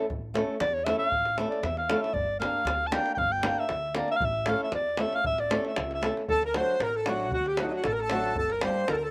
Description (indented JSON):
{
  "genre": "balkan folk, Balkan wedding band",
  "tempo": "116 BPM",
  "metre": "2/4",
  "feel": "swing 53% on 16ths",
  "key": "A phrygian dominant",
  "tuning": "A4 = 440 Hz",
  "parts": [
    { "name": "flamenco guitar", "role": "accompaniment", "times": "0.0-8.8 s", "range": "F#3 to Bb4", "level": "-33 LUFS", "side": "equal", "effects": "none" },
    { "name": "upright bass", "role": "bass", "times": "0.1-9.1 s", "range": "G1 to E2", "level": "-41 LUFS", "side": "equal", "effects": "none" },
    { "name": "davul", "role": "percussion", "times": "0.1-9.0 s", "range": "none", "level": "-36 LUFS", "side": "equal", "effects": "slapback echo" },
    { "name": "warm alto saxophone", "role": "melody", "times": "0.6-9.1 s", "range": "Eb4 to A5", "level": "-30 LUFS", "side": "equal", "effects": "slapback echo" },
    { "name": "accordion", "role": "second line", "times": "6.3-9.1 s", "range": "Eb4 to C5", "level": "-36 LUFS", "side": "equal", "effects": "none" }
  ],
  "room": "little or no reverb",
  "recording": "recorded outdoors, with no room sound",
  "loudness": "-28 LUFS",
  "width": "mono",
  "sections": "0.0-6.3 A section; 6.3-9.1 B section",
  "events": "alto saxophone solo 0.0-6.3",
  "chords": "0.0 A; 2.1 Gm; 4.2 A; 6.3 D; 8.4 Gm",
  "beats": "| 0.10 0.61 | 1.12 1.64 | 2.15 2.66 | 3.18 3.69 | 4.21 4.72 | 5.24 5.76 | 6.28 6.80 | 7.32 7.84 | 8.36 8.88"
}